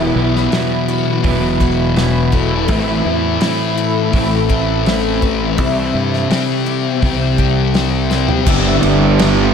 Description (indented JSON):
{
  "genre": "rock, shoegaze and dream pop",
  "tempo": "83 BPM",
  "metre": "4/4",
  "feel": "straight",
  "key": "unclear",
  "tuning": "A4 = 440 Hz",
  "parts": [
    { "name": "deep dark ambient pad", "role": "sustained chords", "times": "0.0-9.5 s", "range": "C4 to B5", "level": "-23 LUFS", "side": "right 2 dB", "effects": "chorus, built-in reverb" },
    { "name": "picked twelve-string acoustic guitar", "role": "arpeggios", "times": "0.0-9.5 s", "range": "E4 to B4", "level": "-24 LUFS", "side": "left 9 dB", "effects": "ensemble chorus, analog delay" },
    { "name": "overdriven electric guitar", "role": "riff", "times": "0.0-9.5 s", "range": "G2 to E4", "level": "-20 LUFS", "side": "right 10 dB", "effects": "reverse reverb" },
    { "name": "thick fuzz guitar", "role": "riff", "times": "0.0-9.5 s", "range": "E2 to C4", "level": "-18 LUFS", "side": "left 9 dB", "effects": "distortion, wide subtle chorus" },
    { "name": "fuzz fingered electric bass", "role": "bass", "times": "0.0-9.5 s", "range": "E1 to G2", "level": "-19 LUFS", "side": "equal", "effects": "overdrive" },
    { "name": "loose indie drum kit", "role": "drums", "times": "0.4-9.4 s", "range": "crash cymbal, hi-hat, kick drum, snare drum, toms", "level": "-19 LUFS", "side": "equal", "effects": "none" }
  ],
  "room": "light reverb, small room reverb",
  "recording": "none",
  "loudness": "-13 LUFS",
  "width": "side -7 dB against mid",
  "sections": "0.0-8.5 A section; 8.5-9.5 A section",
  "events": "drum fill 8.1-8.5",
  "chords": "0.0 Esus2; 2.7 Amadd9; 5.6 C; 8.5 G6"
}